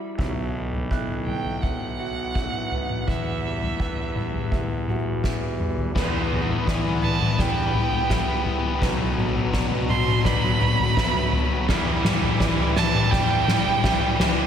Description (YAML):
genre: post-rock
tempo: 84 BPM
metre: 4/4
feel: straight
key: E minor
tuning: A4 = 440 Hz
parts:
  - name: electric guitar through a small old amp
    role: arpeggios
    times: 0.0-14.5 s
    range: E2 to F#4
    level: -33 LUFS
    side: right 2 dB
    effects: wide subtle chorus, slapback echo
  - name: felt-muted upright piano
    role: arpeggios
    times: 0.2-14.5 s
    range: B4 to F#6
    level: -38 LUFS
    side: right 4 dB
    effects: slapback echo
  - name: fuzz fingered electric bass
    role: bass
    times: 0.2-13.4 s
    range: B1 to E3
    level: -29 LUFS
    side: equal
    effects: overdrive
  - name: soft-mallet drum kit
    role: drums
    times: 0.2-14.4 s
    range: crash cymbal, kick drum, snare drum, toms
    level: -24 LUFS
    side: left 2 dB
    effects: none
  - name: rich violin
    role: melody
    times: 1.3-14.5 s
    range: E5 to C6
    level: -27 LUFS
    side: right 6 dB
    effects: slapback echo
  - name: distorted electric guitar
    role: riff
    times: 5.9-14.5 s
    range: B2 to B3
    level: -27 LUFS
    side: left 4 dB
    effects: distortion, slapback echo
  - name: distorted electric guitar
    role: riff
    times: 11.7-14.5 s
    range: E3 to G3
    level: -28 LUFS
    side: right 8 dB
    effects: distortion, slapback echo
room: moderate lush hall reverb, RT60 3.0 s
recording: big arena sound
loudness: -21 LUFS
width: side -8 dB against mid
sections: 0.0-6.0 A section; 6.0-14.5 B section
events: drum fill 5.2-6.0, 6.0-14.5; build-up 6.0-14.5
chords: 0.2 Bsus4; 3.1 Emadd9; 6.0 Em7; 8.8 Bm; 11.7 Em7